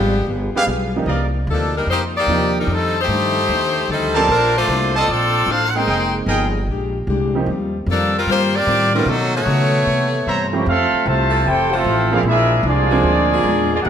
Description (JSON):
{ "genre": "jazz, big band swing", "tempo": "150 BPM", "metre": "4/4", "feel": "swing 67% on 8ths", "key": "Bb major", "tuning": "A4 = 442 Hz", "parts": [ { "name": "edgy saxophone section", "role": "melody", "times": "0.0-10.5 s", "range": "F3 to G5", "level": "-18 LUFS", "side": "left 2 dB", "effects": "none" }, { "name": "clear grand piano", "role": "accompaniment", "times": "0.0-13.4 s", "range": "Eb3 to G5", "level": "-24 LUFS", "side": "right 4 dB", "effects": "none" }, { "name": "picked plugged-in steel-string acoustic guitar", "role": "accompaniment", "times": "0.0-13.9 s", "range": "F2 to C5", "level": "-26 LUFS", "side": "left 4 dB", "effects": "none" }, { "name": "upright bass", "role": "bass", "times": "0.0-13.9 s", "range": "F1 to C#3", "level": "-21 LUFS", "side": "equal", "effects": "none" }, { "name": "brilliant trumpet section", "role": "stabs", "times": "0.5-1.3, 4.1-6.5, 10.3-10.4 s", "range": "G4 to Bb5", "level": "-21 LUFS", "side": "right 2 dB", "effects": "none" }, { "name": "clear trombone section", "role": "second line", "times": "9.3-13.9 s", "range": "C3 to G4", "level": "-23 LUFS", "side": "right 2 dB", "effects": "none" }, { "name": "mellow trumpet section", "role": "melody", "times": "10.6-13.9 s", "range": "Bb3 to A5", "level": "-17 LUFS", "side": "right 1 dB", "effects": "none" }, { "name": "edgy saxophone section", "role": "sustained chords", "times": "11.3-13.8 s", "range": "F3 to C5", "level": "-26 LUFS", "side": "right 1 dB", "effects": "none" } ], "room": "wet recital hall reverb, RT60 1.8 s", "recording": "none", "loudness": "-15 LUFS", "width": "side -8 dB against mid", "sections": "0.0-10.7 A section; 10.7-13.9 B section", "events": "none", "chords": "0.0 G7b9; 1.1 Cm11; 2.7 F13; 4.3 Bbmaj9; 5.9 Fm11; 6.7 Bb13; 7.5 Eb69; 9.1 B9; 9.9 C7b9; 10.7 Fmaj7; 12.2 Bb7", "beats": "0.28 0.68 | 1.08 1.48 1.88 2.28 | 2.68 3.08 3.48 3.88 | 4.28 4.68 5.08 5.47 | 5.87 6.27 6.67 7.07 | 7.47 7.87 8.27 8.67 | 9.07 9.46 9.86 10.26 | 10.66 11.06 11.46 11.85 | 12.25 12.65 13.04 13.44 | 13.84" }